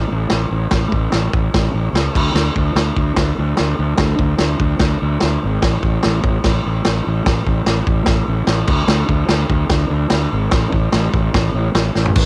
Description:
garage rock duo or trio; 147 BPM; 4/4; straight; A4 = 440 Hz
fuzz fingered electric bass; bass; 0.0-12.3 s; G#1 to D2; -20 LUFS; equal; overdrive
vintage drum kit; drums; 0.3-12.3 s; crash cymbal, kick drum, snare drum, toms; -20 LUFS; equal; cassette tape
little or no reverb; home recording on cassette; -17 LUFS; mono
0.0-12.2 A section
drum fill 12.0
0.31 | 0.72 1.13 1.54 1.95 | 2.35 2.76 3.17 3.58 | 3.99 4.40 4.80 5.21 | 5.62 6.03 6.44 6.85 | 7.26 7.67 8.07 8.48 | 8.89 9.30 9.71 10.12 | 10.53 10.94 11.35 11.75 | 12.16

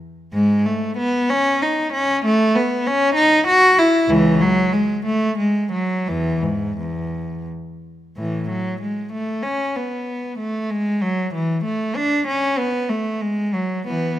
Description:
classical, baroque-style suite movement for unaccompanied cello; 84-98 BPM; 3/4; rubato; E major, A major from 8.2 s; A4 = 441 Hz
rich cello; solo; 0.3-14.2 s; C#2 to F#4; -17 LUFS; equal
light reverb; close, detailed microphones; -17 LUFS; side -13 dB against mid
0.0-8.2 A section; 8.2-14.2 A section
| 0.33 0.97 1.61 | 2.23 2.85 3.47 | 4.09 4.73 5.38 | 6.07 6.78 7.47 | 8.16 8.81 9.44 | 10.08 10.70 11.33 | 11.96 12.59 13.22 | 13.86

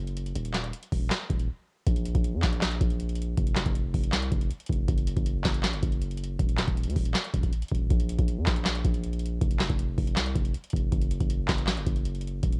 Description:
hip hop, trap; 159 BPM; 4/4; half-time; A4 = 440 Hz
long sustained 808-style bass; bass; 0.0-12.6 s; Eb1 to F2; -32 LUFS; equal
booming analog drum machine; drums; 0.1-12.6 s; handclaps, hi-hat, kick drum, snare drum; -29 LUFS; equal; cassette tape
little or no reverb; home recording on cassette; -28 LUFS; mono
0.0-1.9 A section; 1.9-12.6 B section
break 1.5-1.9
| 0.36 0.73 1.11 1.49 | 1.86 2.24 2.62 3.00 | 3.38 3.75 4.13 4.51 | 4.88 5.26 5.64 6.02 | 6.39 6.77 7.15 7.53 | 7.90 8.28 8.66 9.04 | 9.41 9.79 10.17 10.54 | 10.92 11.30 11.68 12.05 | 12.43

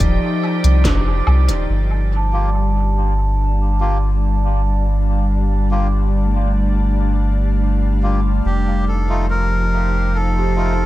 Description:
ambient dub; 71 BPM; 4/4; straight; G minor; A4 = 440 Hz
soft additive organ-like pad; sustained chords; 0.0-10.9 s; F3 to A5; -23 LUFS; left 2 dB; ensemble chorus, built-in reverb
soft dub sub bass; bass; 0.0-10.9 s; Eb1 to C2; -16 LUFS; equal; tube saturation
electronic kick drum; drums; 0.0-1.0 s; -19 LUFS; equal; studio ambience
organic electronic drum kit; drums; 0.0-1.7 s; hi-hat, snare drum, woodblock; -27 LUFS; equal; studio ambience, dub echo
drifting glass-harmonics texture; texture; 0.0-1.7 s; D5; -28 LUFS; right 8 dB; chorus, built-in reverb
vibraphone with soft mallets; arpeggios; 2.2-10.9 s; G3 to A5; -27 LUFS; right 3 dB; low-pass filter, dub echo
melodica; stabs; 2.3-10.7 s; A3 to G4; -29 LUFS; left 1 dB; low-pass filter, dub echo
melodica; melody; 8.5-10.9 s; G4 to Bb4; -23 LUFS; left 1 dB; dub echo
light reverb; -15 LUFS; side -16 dB against mid
0.0-1.7 A section; 1.7-10.9 B section
band accent 0.8-1.3
0.0 F7; 1.7 G7(no3); 8.5 F7
0.00 0.85 | 1.69 2.54 3.38 4.23 | 5.07 5.92 6.76 7.61 | 8.45 9.30 10.14

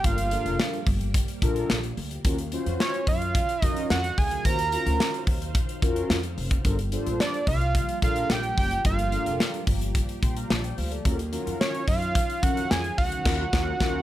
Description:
early-eighties boogie funk; 109 BPM; 4/4; straight; G minor; A4 = 435 Hz
fat analog lead; melody; 0.0-14.0 s; Db5 to Bb5; -28 LUFS; right 3 dB
mellow synth brass; accompaniment; 0.0-14.0 s; Db4 to C6; -31 LUFS; left 2 dB; chorus
string machine, full ensemble; sustained chords; 0.0-14.0 s; Eb3 to F5; -37 LUFS; equal; ensemble chorus
upright bass; bass; 0.0-14.0 s; F1 to Gb2; -30 LUFS; equal
modern studio drum kit; drums; 0.0-14.0 s; crash cymbal, hi-hat, kick drum, snare drum; -26 LUFS; equal
small room reverb; -23 LUFS; side -14 dB against mid
0.0-14.0 A section
band accent 13.3-14.0
0.0 Gm9; 2.2 Ebm9; 6.6 Gm9; 11.1 Ebm9
| 0.04 0.59 1.14 1.70 | 2.25 2.80 3.35 3.90 | 4.45 5.00 5.55 6.10 | 6.65 7.20 7.75 8.30 | 8.85 9.40 9.95 10.50 | 11.05 11.60 12.15 12.70 | 13.26 13.80

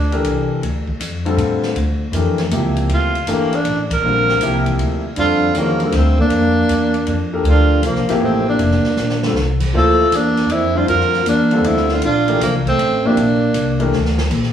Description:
modal jazz; 158 BPM; 3/4; swing 67% on 8ths; Bb lydian; A4 = 440 Hz
breathy tenor saxophone; melody; 0.0-0.5, 2.9-13.9 s; Bb3 to Bb4; -18 LUFS; right 2 dB
upright bass; bass; 0.0-14.5 s; F1 to Bb2; -19 LUFS; equal
warm concert grand piano; accompaniment; 0.1-13.9 s; C3 to C5; -21 LUFS; left 3 dB
swinging big-band drum kit; drums; 0.1-14.5 s; crash cymbal, hi-hat, kick drum, ride cymbal, snare drum; -28 LUFS; left 1 dB
breathy trombone; second line; 5.2-13.9 s; F3 to F4; -19 LUFS; right 1 dB
wet stone room reverb, RT60 1.4 s; band playing live in one room, studio reverb; -14 LUFS; side -9 dB against mid
0.0-14.3 A section
band accent 3.8; drum fill 9.0-9.4, 13.9-14.3
0.0 Bbmaj9
0.25 | 0.62 1.00 1.38 | 1.76 2.14 2.52 | 2.90 3.28 3.65 | 4.03 4.41 4.79 | 5.17 5.55 5.93 | 6.31 6.69 7.07 | 7.45 7.83 8.22 | 8.60 8.98 9.36 | 9.74 10.12 10.50 | 10.88 11.27 11.65 | 12.03 12.41 12.79 | 13.17 13.55 13.93 | 14.31

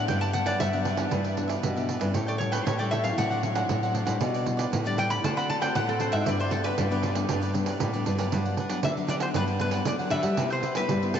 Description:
samba and choro; 117 BPM; 4/4; straight; G major; A4 = 439 Hz
metal-body resonator slide guitar; melody; 0.0-11.2 s; A4 to B5; -30 LUFS; left 2 dB; diffuse ambient delay
nylon-string guitar; accompaniment; 0.0-11.2 s; G2 to F#4; -33 LUFS; left 4 dB
nylon-string guitar; bass; 0.0-11.2 s; G2 to G3; -29 LUFS; equal
cavaquinho; accompaniment; 0.1-11.2 s; D4 to G5; -34 LUFS; right 2 dB
pandeiro; percussion; 0.1-11.2 s; -31 LUFS; right 6 dB
wet huge ambient reverb, RT60 6.9 s; dreamy mix soaked in reverb, nothing above 7.9 kHz; -24 LUFS; side -8 dB against mid
0.0-8.3 A section; 8.3-11.2 B section
resonator guitar played with a steel bar solo 0.0-8.3
0.1 Gmaj7; 1.1 Em7/G; 2.1 A7; 3.2 D7/A; 4.2 G6/B; 5.2 D7; 6.3 G; 8.3 Gmaj7; 10.4 Cmaj7
| 0.09 0.61 1.12 1.64 | 2.15 2.67 3.18 3.69 | 4.21 4.72 5.24 5.75 | 6.27 6.78 7.30 7.81 | 8.32 8.84 9.36 9.87 | 10.38 10.90

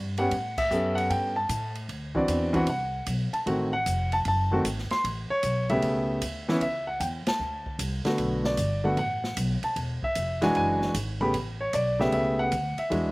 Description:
jazz piano trio; 152 BPM; 4/4; swing 67% on 8ths; A mixolydian; A4 = 440 Hz
upright bass; bass; 0.0-13.1 s; E1 to A2; -31 LUFS; equal
warm concert grand piano; melody; 0.2-13.1 s; C#3 to B#5; -25 LUFS; equal; slapback echo
open jazz drum kit; drums; 0.2-13.0 s; crash cymbal, hi-hat, kick drum, ride cymbal, snare drum; -36 LUFS; right 1 dB
little or no reverb; recorded outdoors, with no room sound; -24 LUFS; side -24 dB against mid
0.0-13.1 A section
band accent 0.5, 7.2
0.3 A9; 1.9 D9; 3.5 D#dim7; 5.0 A9; 6.6 C#m; 7.4 D7(no3); 8.2 Bm7; 9.8 E9; 11.3 A9
| 0.31 0.71 1.10 1.49 | 1.89 2.28 2.68 3.07 | 3.46 3.86 4.25 4.64 | 5.04 5.43 5.83 6.22 | 6.61 7.00 7.40 7.79 | 8.19 8.58 8.97 9.37 | 9.76 10.15 10.55 10.94 | 11.34 11.73 12.13 12.52 | 12.92

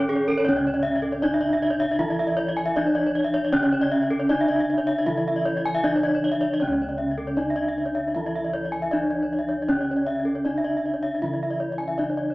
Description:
gamelan; 78 BPM; 4/4; straight; A4 = 443 Hz
gamelan-type bronze metallophone; melody; 0.0-12.3 s; C#4 to E4; -24 LUFS; equal
gamelan-type bronze metallophone; accompaniment; 0.0-12.3 s; C#3 to E3; -35 LUFS; equal
gamelan-type bronze metallophone; arpeggios; 0.0-12.3 s; A4 to G#5; -28 LUFS; left 2 dB
gamelan-type bossed gongs; bass; 0.0-12.3 s; C#2 to D4+35c; -33 LUFS; equal
gamelan-type bronze metallophone; arpeggios; 0.1-12.3 s; G#4 to E5; -29 LUFS; right 1 dB
wet large studio reverb, RT60 0.9 s; band playing live in one room, small speaker sound; -21 LUFS; side -20 dB against mid
0.5-12.3 A section
| 0.47 1.24 2.00 2.77 | 3.54 4.31 5.08 5.85 | 6.62 7.39 8.16 8.93 | 9.70 10.47 11.23 12.00

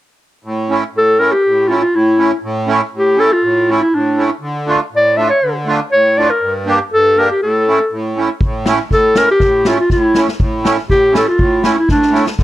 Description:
klezmer; 121 BPM; 2/4; straight; A phrygian dominant; A4 = 440 Hz
accordion; accompaniment; 0.4-12.4 s; G2 to G4; -17 LUFS; right 2 dB; light tremolo tuning
mellow clarinet; melody; 1.0-12.2 s; D4 to E5; -12 LUFS; equal; slapback echo
street-band drum kit; drums; 8.4-12.4 s; kick drum, snare drum; -17 LUFS; left 1 dB
studio ambience; dry, close 1970s-style studio recording; -11 LUFS; side -14 dB against mid
0.5-8.4 A section; 8.4-12.4 A section
drum fill 11.9-12.4
0.5 A; 4.4 Dm; 6.4 Gm; 7.4 A
| 0.47 0.96 | 1.46 1.95 | 2.45 2.94 | 3.44 3.94 | 4.43 4.93 | 5.42 5.92 | 6.42 6.92 | 7.41 7.91 | 8.41 8.90 | 9.40 9.90 | 10.40 10.89 | 11.39 11.89 | 12.39

